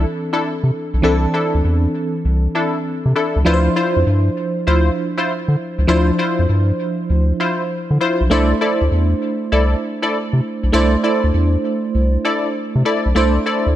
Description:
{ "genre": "R&B", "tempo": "99 BPM", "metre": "4/4", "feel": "swing 67% on 16ths", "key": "unclear", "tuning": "A4 = 440 Hz", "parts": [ { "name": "FM electric piano", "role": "accompaniment", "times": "0.0-13.8 s", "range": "E3 to C5", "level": "-20 LUFS", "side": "right 2 dB", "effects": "chorus, tremolo" }, { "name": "funky polysynth comp", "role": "stabs", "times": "0.0-13.7 s", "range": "D4 to D5", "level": "-21 LUFS", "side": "left 2 dB", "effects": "chorus, tape echo" }, { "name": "round analog bass", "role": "bass", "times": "0.0-13.7 s", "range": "B1 to D3", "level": "-15 LUFS", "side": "equal", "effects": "none" } ], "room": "light reverb", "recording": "none", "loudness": "-15 LUFS", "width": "side -12 dB against mid", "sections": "0.0-13.8 A section", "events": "none", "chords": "0.0 C69; 3.5 Dm9; 8.3 C69", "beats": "0.43 | 1.04 1.64 2.25 2.86 | 3.46 4.07 4.67 5.28 | 5.89 6.49 7.10 7.70 | 8.31 8.92 9.52 10.13 | 10.73 11.34 11.95 12.55 | 13.16" }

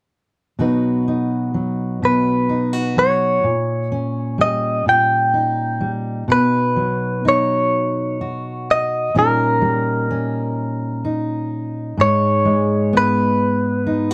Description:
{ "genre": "acoustic folk-pop ballad", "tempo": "42 BPM (dotted quarters)", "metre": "6/8", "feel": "straight", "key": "B major", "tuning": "A4 = 440 Hz", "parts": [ { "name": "fingerpicked steel-string acoustic guitar", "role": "accompaniment", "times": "0.6-14.1 s", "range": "G#2 to B4", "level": "-22 LUFS", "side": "equal", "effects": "none" }, { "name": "direct-recorded clean electric guitar", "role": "melody", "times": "2.1-14.1 s", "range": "A#4 to G5", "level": "-20 LUFS", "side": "equal", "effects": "tremolo" } ], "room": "moderate small room ambience, RT60 0.5 s", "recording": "dark, warm production", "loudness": "-19 LUFS", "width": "mono", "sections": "0.6-6.3 A section; 6.3-14.1 B section", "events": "none", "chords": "0.6 B; 3.4 D#7/A#; 6.3 B; 9.2 D#7/A#; 12.0 G#m", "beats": "| 0.60 2.03 | 3.45 4.87 | 6.29 7.73 | 9.15 10.57 | 11.99 13.40" }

